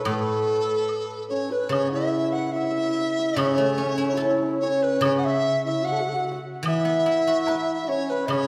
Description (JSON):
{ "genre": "chinese traditional, Chinese chamber ensemble", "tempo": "72 BPM", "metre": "2/4", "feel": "straight", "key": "unclear", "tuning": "A4 = 435 Hz", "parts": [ { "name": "mellow hollow dizi", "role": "melody", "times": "0.0-8.5 s", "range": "A4 to F#5", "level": "-28 LUFS", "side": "equal", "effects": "none" }, { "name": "breathy reedy low xiao", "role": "second line", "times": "0.0-8.5 s", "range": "C#4 to B4", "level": "-30 LUFS", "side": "equal", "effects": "none" }, { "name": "hammered dulcimer", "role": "second line", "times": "0.0-8.5 s", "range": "A4 to F#5", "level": "-32 LUFS", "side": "equal", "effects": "none" }, { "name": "guzheng", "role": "accompaniment", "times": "0.0-8.5 s", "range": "A2 to B4", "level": "-30 LUFS", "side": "equal", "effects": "none" }, { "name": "woodblock", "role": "percussion", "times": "0.1-8.5 s", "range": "none", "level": "-36 LUFS", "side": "equal", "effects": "none" } ], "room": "wet recital hall reverb, RT60 1.8 s", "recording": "recorded in a church or concert hall", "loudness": "-24 LUFS", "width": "mono", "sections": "0.0-1.7 A section; 1.7-8.5 B section", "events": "none", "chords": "none" }